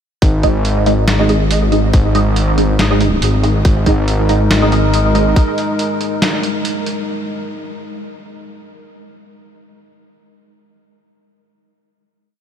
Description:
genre	deep dubstep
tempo	140 BPM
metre	4/4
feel	swing 55% on 16ths, half-time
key	unclear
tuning	A4 = 440 Hz
part	dark detuned saw bass	bass	0.2-5.3 s	G#1	-14 LUFS	equal	none
part	electronic kick drum	drums	0.2-5.5 s	none	-12 LUFS	equal	none
part	trip hop sampler-style drum kit	drums	0.2-7.0 s	hi-hat, snare drum	-21 LUFS	equal	none
part	filtered dub chord stab	stabs	0.4-5.3 s	G#3 to D#5	-18 LUFS	right 2 dB	phaser, ensemble chorus, dub echo
part	dark analog pad	sustained chords	3.7-7.0 s	G#3 to A#4	-20 LUFS	equal	chorus
room	moderate huge ambient reverb, RT60 6.0 s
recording	dreamy mix soaked in reverb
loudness	-12 LUFS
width	side -9 dB against mid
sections	0.2-7.1 drop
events	drop 0.2-7.1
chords	0.2 G#5

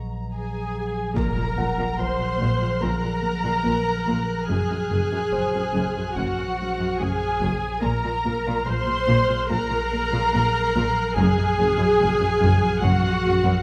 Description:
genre	cinematic, suspense film score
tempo	72 BPM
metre	4/4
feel	straight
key	unclear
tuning	A4 = 440 Hz
part	metallic inharmonic drone	drone	0.0-13.6 s	Bb1	-32 LUFS	equal	chorus, built-in reverb
part	muted studio violin section	texture	0.0-13.6 s	Bb5 to C7	-40 LUFS	equal	none
part	warm grand piano	texture	0.0-7.9 s	C5 to Gb5	-38 LUFS	equal	none
part	muted studio violin section	melody	0.3-13.6 s	Gb5 to C6	-31 LUFS	equal	none
part	muted studio violin section	second line	0.3-13.6 s	Gb4 to C5	-33 LUFS	equal	none
part	muted studio viola section	accompaniment	0.3-13.6 s	Gb4 to C5	-29 LUFS	equal	none
part	muted studio cello section	riff	1.2-13.5 s	Gb2 to Bb3	-31 LUFS	equal	none
part	muted studio cello section	bass	1.2-13.5 s	Gb2 to Bb2	-31 LUFS	equal	none
part	muted studio double bass section	bass	1.2-12.9 s	Gb1 to Bb1	-30 LUFS	equal	none
part	impact	sound effects	1.2-4.5 s	none	-33 LUFS	equal	none
room	moderate scoring stage reverb, RT60 1.6 s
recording	close, detailed microphones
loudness	-23 LUFS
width	mono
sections	0.0-1.2 A section; 1.2-13.6 B section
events	break 0.0-1.2; impact 1.2-4.5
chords	0.0 N.C.; 1.2 Bb5; 4.5 Gb; 7.8 Bb5; 11.2 Gb

